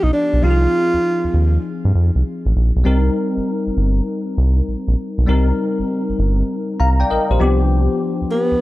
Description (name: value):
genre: R&B, new jack swing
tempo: 99 BPM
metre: 4/4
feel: swing 67% on 16ths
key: C minor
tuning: A4 = 438 Hz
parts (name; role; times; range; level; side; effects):
- breathy tenor saxophone; melody; 0.0-1.6, 8.3-8.6 s; B3 to F4; -18 LUFS; right 1 dB; none
- bell-like tine electric piano; accompaniment; 0.0-8.6 s; F3 to Bb5; -20 LUFS; left 2 dB; ensemble chorus
- round analog bass; bass; 0.0-8.6 s; G1 to G2; -15 LUFS; equal; none
room: small room ambience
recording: dry, close 1970s-style studio recording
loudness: -15 LUFS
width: side -17 dB against mid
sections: 0.0-8.6 A section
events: none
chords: 0.4 Ab6/C; 2.9 Cm7; 7.4 G7/C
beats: | 0.43 1.03 1.64 2.25 | 2.85 3.46 4.06 4.67 | 5.28 5.88 6.49 7.09 | 7.70 8.31